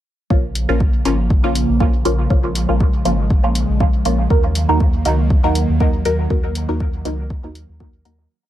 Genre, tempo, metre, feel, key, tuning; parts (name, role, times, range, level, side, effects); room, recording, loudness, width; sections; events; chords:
dub techno; 120 BPM; 4/4; swing 54% on 16ths; Bb minor; A4 = 440 Hz
airy breathy pad; sustained chords; 0.3-8.3 s; Db3 to Bb3; -24 LUFS; right 2 dB; chorus, sidechain pumping
filtered dub chord stab; stabs; 0.3-8.1 s; F3 to Bb4; -21 LUFS; equal; phaser, sidechain pumping, dub echo
soft dub sub bass; bass; 0.3-8.3 s; Ab1 to Eb2; -20 LUFS; equal; sidechain pumping
electronic kick drum; drums; 0.3-7.9 s; -16 LUFS; equal
electronic hi-hat; drums; 0.6-8.2 s; -26 LUFS; left 2 dB
little or no reverb; echo-heavy mix; -14 LUFS; side -12 dB against mid
0.3-8.3 groove
fade-out 5.6-8.3
0.3 Bbm; 4.3 Ebm